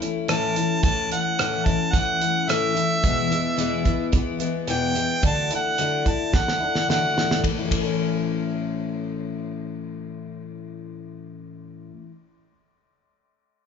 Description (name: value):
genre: folk rock and heartland rock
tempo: 109 BPM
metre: 4/4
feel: straight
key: A major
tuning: A4 = 442 Hz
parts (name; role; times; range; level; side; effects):
- picked twelve-string acoustic guitar; accompaniment; 0.0-12.1 s; E2 to E4; -25 LUFS; left 5 dB; none
- damped 70s drum kit; drums; 0.0-7.9 s; hi-hat, kick drum, ride cymbal, rim click, snare drum; -24 LUFS; right 2 dB; none
- clear harmonica; melody; 0.3-7.4 s; E5 to A5; -24 LUFS; right 2 dB; none
room: light reverb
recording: band playing live in one room, nothing above 7.5 kHz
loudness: -20 LUFS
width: side -7 dB against mid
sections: 0.0-7.4 A section; 7.4-11.8 B section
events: harmonica solo 0.0-7.4; drum fill 6.3-7.4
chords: 0.0 A; 3.0 E; 5.2 Dadd9; 7.4 A